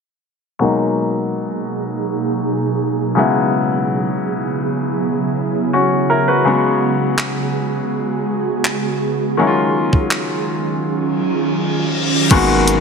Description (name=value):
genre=contemporary R&B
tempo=82 BPM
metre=4/4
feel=straight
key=Eb minor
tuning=A4 = 440 Hz
part: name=clear concert grand piano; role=accompaniment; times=0.6-12.8 s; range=Cb3 to B4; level=-18 LUFS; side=left 3 dB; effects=low-pass filter
part: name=ethereal airy pad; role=sustained chords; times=1.3-12.8 s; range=Cb3 to Bb4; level=-19 LUFS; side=right 3 dB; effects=ensemble chorus, built-in reverb, low-pass filter
part: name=crisp 8-bit digital drum machine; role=drums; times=7.2-12.8 s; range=crash cymbal, handclaps, hi-hat, kick drum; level=-19 LUFS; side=equal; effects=none
part: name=reverse cymbal and impact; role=sound effects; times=11.2-12.8 s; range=none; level=-22 LUFS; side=left 3 dB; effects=none
part: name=long sustained 808-style bass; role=bass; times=12.3-12.8 s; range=Ab1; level=-20 LUFS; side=right 1 dB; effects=none
room=light reverb, digital ambience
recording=none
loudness=-15 LUFS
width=side -5 dB against mid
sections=0.6-12.3 A section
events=filter sweep 0.6-12.3; reverse cymbal 11.2-12.3; impact 12.3-12.8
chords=0.6 Abm9; 3.2 E69; 6.5 Db7sus4; 9.4 Ebm11